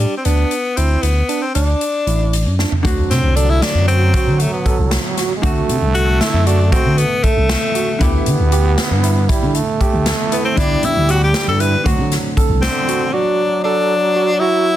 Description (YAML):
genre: progressive instrumental, band music in an uneven meter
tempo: 233 BPM (eighths)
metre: 5/8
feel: straight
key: D mixolydian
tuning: A4 = 440 Hz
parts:
  - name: bright tenor saxophone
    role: melody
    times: 0.0-14.8 s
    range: G3 to B4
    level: -18 LUFS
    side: left 3 dB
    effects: none
  - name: barky tine electric piano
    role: arpeggios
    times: 0.0-14.7 s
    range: D4 to A4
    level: -23 LUFS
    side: right 7 dB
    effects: auto-pan
  - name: smooth gliding synth bass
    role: bass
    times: 0.0-12.7 s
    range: A1 to D3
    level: -16 LUFS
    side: equal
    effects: none
  - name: swinging big-band drum kit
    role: drums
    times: 0.2-13.0 s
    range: hi-hat, kick drum, snare drum, toms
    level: -20 LUFS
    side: equal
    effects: none
  - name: growling trombone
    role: second line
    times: 2.8-14.8 s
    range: D3 to B3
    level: -23 LUFS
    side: right 4 dB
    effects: none
  - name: vintage hollow-body jazz guitar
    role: accompaniment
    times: 2.8-13.1 s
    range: D3 to G4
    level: -25 LUFS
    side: left 1 dB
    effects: none
room: moderate small room reverb, RT60 0.5 s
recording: dense, heavily limited modern master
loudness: -13 LUFS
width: side -12 dB against mid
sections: 0.0-2.8 A section; 2.8-13.1 B section; 13.1-14.8 C section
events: drum fill 2.6; tenor saxophone solo 2.8-13.1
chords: 0.0 E5; 1.5 D; 2.8 D7; 8.0 Em/D; 11.9 D7; 13.1 D